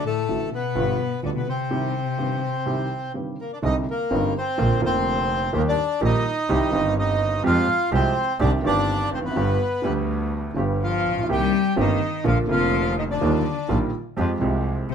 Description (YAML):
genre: tango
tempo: 126 BPM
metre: 4/4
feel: rubato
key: C minor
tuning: A4 = 440 Hz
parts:
  - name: bandoneon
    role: melody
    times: 0.0-14.9 s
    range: A3 to G5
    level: -24 LUFS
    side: equal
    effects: none
  - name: rich cello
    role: second line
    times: 0.0-3.1, 10.8-14.9 s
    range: A2 to G3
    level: -27 LUFS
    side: left 10 dB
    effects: none
  - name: warm baby grand piano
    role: accompaniment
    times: 0.3-14.9 s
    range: F1 to G4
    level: -24 LUFS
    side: right 2 dB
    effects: none
  - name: bright double bass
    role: bass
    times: 0.3-14.9 s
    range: F1 to F2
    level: -25 LUFS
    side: right 1 dB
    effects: none
room: light reverb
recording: minimal, uncompressed stereo recording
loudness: -20 LUFS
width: side -7 dB against mid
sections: 0.0-3.6 A section; 3.6-14.9 B section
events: none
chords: 0.0 D; 0.8 G7; 1.7 Cmadd9; 4.6 Bb; 5.5 Eb; 6.5 Cm; 7.4 Fmadd9; 8.4 Cmadd9; 9.4 G; 11.3 Cm7; 12.3 Bb; 13.2 Ebadd9; 14.2 Fmadd9